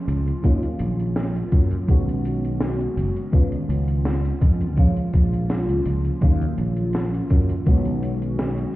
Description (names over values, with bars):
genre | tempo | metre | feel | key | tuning
vaporwave | 83 BPM | 4/4 | swing 54% on 16ths | Eb minor | A4 = 440 Hz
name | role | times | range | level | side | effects
FM electric piano with soft pad layer | accompaniment | 0.0-8.8 s | Eb3 to F#4 | -25 LUFS | equal | phaser, lush chorus, tape echo
sustaining fretless electric bass | bass | 0.1-8.6 s | F#1 to Gb2 | -24 LUFS | equal | none
deep reggae drum kit | drums | 0.1-8.7 s | hi-hat, snare drum | -31 LUFS | equal | none
electronic kick drum | drums | 0.4-7.8 s | none | -18 LUFS | equal | overdrive
room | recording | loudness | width
light reverb, small room ambience | heard muffled through a wall, stone room reverb, cassette tape, EQ | -19 LUFS | side -17 dB against mid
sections
0.0-8.8 A section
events
none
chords
0.4 Ebm7; 1.9 B69; 3.3 Db9; 4.8 Bbm7; 6.2 Ebm7; 7.7 B69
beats
| 0.44 1.16 1.89 2.61 | 3.33 4.05 4.78 5.50 | 6.22 6.95 7.67 8.39